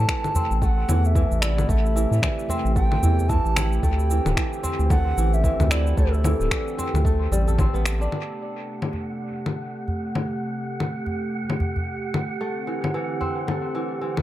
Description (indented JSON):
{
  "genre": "organic downtempo",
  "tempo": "112 BPM",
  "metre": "4/4",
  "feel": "swing 59% on 16ths",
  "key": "A dorian",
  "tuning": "A4 = 440 Hz",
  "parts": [
    { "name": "bass bansuri", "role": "melody", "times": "0.0-7.5 s", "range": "A4 to A5", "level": "-29 LUFS", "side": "equal", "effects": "analog delay" },
    { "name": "warm analog pad", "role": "sustained chords", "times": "0.0-14.2 s", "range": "C3 to G4", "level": "-31 LUFS", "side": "right 1 dB", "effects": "chorus, sidechain pumping" },
    { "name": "kora", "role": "arpeggios", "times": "0.0-14.2 s", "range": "E3 to A4", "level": "-30 LUFS", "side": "right 1 dB", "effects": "dub echo" },
    { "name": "round analog bass", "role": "bass", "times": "0.0-8.1 s", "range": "D1 to A2", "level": "-21 LUFS", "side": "equal", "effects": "none" },
    { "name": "electronic finger snaps, shaker and congas", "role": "drums", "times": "0.1-14.2 s", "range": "none", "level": "-27 LUFS", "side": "left 2 dB", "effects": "studio ambience, dub echo" },
    { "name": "electronic kick drum", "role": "drums", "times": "0.1-7.7 s", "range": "none", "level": "-23 LUFS", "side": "equal", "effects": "overdrive, studio ambience" },
    { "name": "udu", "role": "percussion", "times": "0.4-14.2 s", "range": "none", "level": "-28 LUFS", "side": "equal", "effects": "none" },
    { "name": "wind-like tuned noise texture", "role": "texture", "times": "8.7-14.2 s", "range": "F#5", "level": "-34 LUFS", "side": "right 2 dB", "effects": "built-in reverb" }
  ],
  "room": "moderate spring reverb, RT60 1.3 s, digital ambience",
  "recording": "echo-heavy mix",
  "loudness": "-21 LUFS",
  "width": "side -14 dB against mid",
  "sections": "0.0-8.1 A section; 8.1-14.2 B section",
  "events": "none",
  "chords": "0.0 Am7; 3.8 D7sus4; 8.1 Am7; 12.4 D7sus4"
}